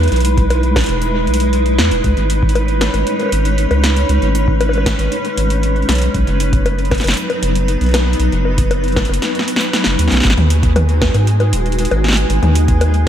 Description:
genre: IDM.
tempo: 117 BPM.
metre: 4/4.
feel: straight.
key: G# minor.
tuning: A4 = 440 Hz.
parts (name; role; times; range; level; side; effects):
granular cloud pad; sustained chords; 0.0-13.1 s; F#3 to C#5; -20 LUFS; equal; built-in reverb.
round analog bass; bass; 0.0-13.1 s; D#1 to G#2; -15 LUFS; equal; none.
electro analog drum machine; drums; 0.0-13.0 s; bongos, hi-hat, snare drum, toms; -19 LUFS; left 1 dB; analog delay.
bubbling stepped-filter texture; texture; 0.0-13.1 s; G#4 to B4; -23 LUFS; left 1 dB; chorus, built-in reverb.
electronic kick drum; drums; 0.4-12.8 s; none; -18 LUFS; equal; none.
room: light reverb.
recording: echo-heavy mix.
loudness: -12 LUFS.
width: side -10 dB against mid.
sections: 0.0-10.2 A section; 10.2-13.1 B section.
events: kick drops out 9.2-10.2; drum fill 9.2-10.2.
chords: 0.0 Emaj7; 2.0 C#sus2; 6.1 B; 10.2 G#m7.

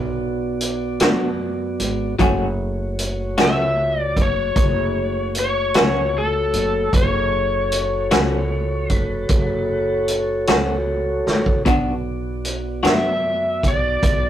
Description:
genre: slow blues.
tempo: 51 BPM (dotted quarters).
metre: 12/8.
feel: straight.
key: F# minor.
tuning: A4 = 440 Hz.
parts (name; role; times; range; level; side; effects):
mellow tonewheel organ; sustained chords; 0.0-14.3 s; A3 to D5; -25 LUFS; right 1 dB; slow rotary speaker.
upright bass; bass; 0.0-14.3 s; F#1 to F#2; -26 LUFS; equal; none.
vintage drum kit; drums; 0.6-14.2 s; hi-hat, kick drum, snare drum; -21 LUFS; right 1 dB; none.
electric guitar through a small old amp; accompaniment; 1.0-13.1 s; B2 to F#4; -19 LUFS; left 1 dB; tremolo.
overdriven slide guitar; melody; 3.4-14.3 s; A4 to E5; -22 LUFS; left 2 dB; none.
room: light reverb.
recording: rough rehearsal-room recording, tube saturation.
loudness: -17 LUFS.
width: side -11 dB against mid.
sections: 0.0-14.3 A section.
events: drum fill 11.3-11.7.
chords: 0.0 Bm; 2.2 F#m; 11.7 Bm.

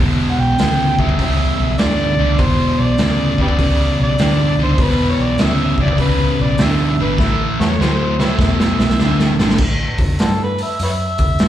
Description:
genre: blues rock power trio and southern rock.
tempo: 100 BPM.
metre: 4/4.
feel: swing 66% on 8ths.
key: unclear.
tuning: A4 = 439 Hz.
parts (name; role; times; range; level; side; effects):
sludgy distorted guitar; riff; 0.0-9.6 s; E2 to F#3; -17 LUFS; equal; overdrive, slapback echo.
vintage muted picked electric bass; bass; 0.0-11.5 s; E1 to G2; -19 LUFS; equal; none.
overdriven harmonica; melody; 0.3-11.5 s; D4 to G5; -21 LUFS; right 1 dB; slapback echo.
raw garage drum kit; drums; 0.6-11.5 s; crash cymbal, hi-hat, kick drum, snare drum; -18 LUFS; equal; none.
room: light reverb, studio reverb.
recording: live gig heard through the venue's PA, club reverb.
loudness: -13 LUFS.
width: side -11 dB against mid.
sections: 0.0-9.6 A section; 9.6-11.5 B section.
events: drum fill 7.2-9.6; harmonica solo 9.6-11.5.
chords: 0.0 E7(no3); 7.2 A5; 8.4 E7(no3); 9.6 A5.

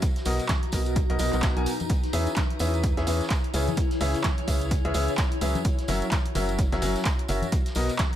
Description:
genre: piano house.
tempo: 128 BPM.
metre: 4/4.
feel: swing 59% on 16ths.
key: B major.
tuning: A4 = 441 Hz.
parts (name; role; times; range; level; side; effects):
electronic kick drum; drums; 0.0-8.1 s; none; -25 LUFS; equal; none.
punchy analog drum machine; drums; 0.0-8.2 s; handclaps, hi-hat, woodblock; -33 LUFS; right 1 dB; none.
vintage drum kit; drums; 0.0-8.1 s; hi-hat, snare drum; -42 LUFS; equal; none.
tambourine and congas; percussion; 0.0-8.1 s; none; -37 LUFS; left 4 dB; none.
granular cloud pad; texture; 0.0-8.2 s; D#4 to A#5; -34 LUFS; equal; built-in reverb, sidechain pumping.
clear upright piano; riff; 0.3-7.9 s; B2 to G#5; -29 LUFS; left 2 dB; sidechain pumping, digital delay.
organ-like FM bass; bass; 0.3-7.9 s; F#1 to E2; -28 LUFS; equal; sidechain pumping.
room: small room ambience.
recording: none.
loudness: -23 LUFS.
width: side -11 dB against mid.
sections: 0.0-8.2 A section.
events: none.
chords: 0.0 Bmaj7; 1.9 E6; 3.5 C#m7; 5.6 F#7; 7.5 Bmaj7.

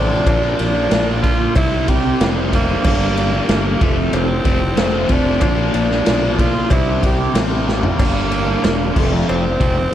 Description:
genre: classic rock.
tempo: 93 BPM.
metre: 4/4.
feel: straight.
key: unclear.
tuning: A4 = 435 Hz.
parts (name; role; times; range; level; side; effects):
growling tenor saxophone; melody; 0.0-9.9 s; A3 to G4; -21 LUFS; right 1 dB; none.
tonewheel organ; sustained chords; 0.0-9.9 s; A3 to Bb4; -32 LUFS; right 1 dB; none.
overdriven electric guitar; riff; 0.0-9.8 s; F2 to E4; -20 LUFS; left 1 dB; phaser, slapback echo.
fuzz fingered electric bass; bass; 0.0-9.9 s; E1 to C2; -21 LUFS; equal; overdrive.
vintage drum kit; drums; 0.3-9.8 s; crash cymbal, kick drum, ride cymbal, snare drum, toms; -18 LUFS; equal; none.
cowbell; percussion; 0.3-9.4 s; none; -33 LUFS; equal; none.
room: moderate concert hall reverb, RT60 1.9 s, studio ambience.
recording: big arena sound.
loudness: -14 LUFS.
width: side -11 dB against mid.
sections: 0.0-9.9 A section.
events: drum fill 7.7-8.0.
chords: 0.3 Bb; 1.6 C; 2.8 Gm; 3.8 F; 5.4 Bb; 6.7 C; 8.0 Gm; 9.0 F.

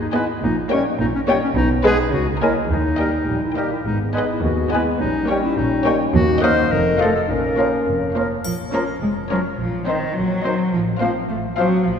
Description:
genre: cinematic, playful, whimsical film cue.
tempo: 105 BPM.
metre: 2/4.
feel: straight.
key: Bb minor from 6.1 s.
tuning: A4 = 440 Hz.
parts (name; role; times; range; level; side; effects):
warm clarinet; second line; 0.0-11.7 s; B3 to C5; -23 LUFS; left 2 dB; none.
clear chamber double bass section; bass; 0.0-12.0 s; F1 to D#2; -26 LUFS; right 1 dB; none.
rich chamber cello section; bass; 0.0-12.0 s; D#2 to Bb3; -24 LUFS; right 1 dB; none.
warm symphonic violin section; melody; 0.1-11.8 s; Db5 to G#5; -29 LUFS; left 6 dB; none.
mellow hollow flute section; second line; 0.1-11.6 s; C5 to F5; -30 LUFS; equal; none.
rich chamber violin section; second line; 0.1-11.8 s; A#4 to D#5; -29 LUFS; left 3 dB; none.
warm oboe; second line; 0.1-11.7 s; A4 to C#5; -31 LUFS; right 1 dB; none.
rich chamber viola section; accompaniment; 0.1-11.8 s; G#3 to Db4; -27 LUFS; right 1 dB; none.
warm bassoon; accompaniment; 0.1-11.7 s; Eb3 to G#3; -30 LUFS; right 1 dB; none.
dark French horn section; sustained chords; 0.1-11.7 s; G3 to F4; -27 LUFS; left 2 dB; none.
triangle; percussion; 8.4-9.5 s; none; -35 LUFS; left 1 dB; none.
room: wet church reverb, RT60 3.5 s.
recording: recorded in a church or concert hall.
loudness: -17 LUFS.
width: side -7 dB against mid.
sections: 0.0-8.4 A section; 8.4-12.0 B section.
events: none.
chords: 0.4 D#7/A#; 1.6 G#m/B; 2.1 A#m7b5/C#; 2.7 D#; 3.9 G#m; 5.0 D#7/A#; 6.1 Ebm; 6.7 F7; 7.3 Bbm; 9.6 Cm7b5/Bb; 10.7 F/A.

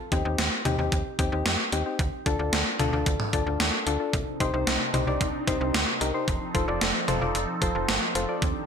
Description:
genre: synth-pop.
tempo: 112 BPM.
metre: 4/4.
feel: straight.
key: C dorian.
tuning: A4 = 439 Hz.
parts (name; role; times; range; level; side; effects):
soft electric-piano-like synth keys; accompaniment; 0.1-8.4 s; C4 to D5; -29 LUFS; left 4 dB; chorus.
slap-like FM bass; bass; 0.1-8.5 s; F1 to F2; -30 LUFS; right 1 dB; none.
gated 80s digital drum machine; drums; 0.1-8.5 s; hi-hat, kick drum, snare drum, toms; -27 LUFS; right 1 dB; gated reverb, gated reverb snare.
phased analog pad; sustained chords; 4.1-8.7 s; C3 to A4; -32 LUFS; right 2 dB; phaser, chorus.
room: moderate plate reverb, RT60 1.9 s.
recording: bright 1980s-style digital production.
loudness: -23 LUFS.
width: side -7 dB against mid.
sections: 0.0-8.7 A section.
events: none.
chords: 0.0 Cm/Eb; 2.0 Dm; 4.1 Cmadd9; 6.3 F7.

